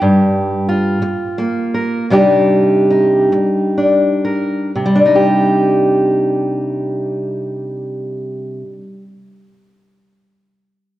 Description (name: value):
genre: folk, solo fingerstyle acoustic guitar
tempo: 38-61 BPM (dotted quarters)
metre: 6/8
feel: straight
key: C minor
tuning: A4 = 439 Hz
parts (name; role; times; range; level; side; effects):
- fingerpicked steel-string acoustic guitar; solo; 0.0-9.0 s; G2 to Bb4; -13 LUFS; equal; none
room: wet scoring stage reverb, RT60 1.7 s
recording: worn, warbling old tape, cassette tape, warbly pitch drift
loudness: -13 LUFS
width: side -14 dB against mid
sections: 0.0-4.8 A section; 4.8-11.0 B section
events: slowing down 0.0-4.8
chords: 0.0 Gm7; 2.1 Cmadd9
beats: | 0.01 1.01 | 2.09 3.31 | 4.75 6.33 | 7.90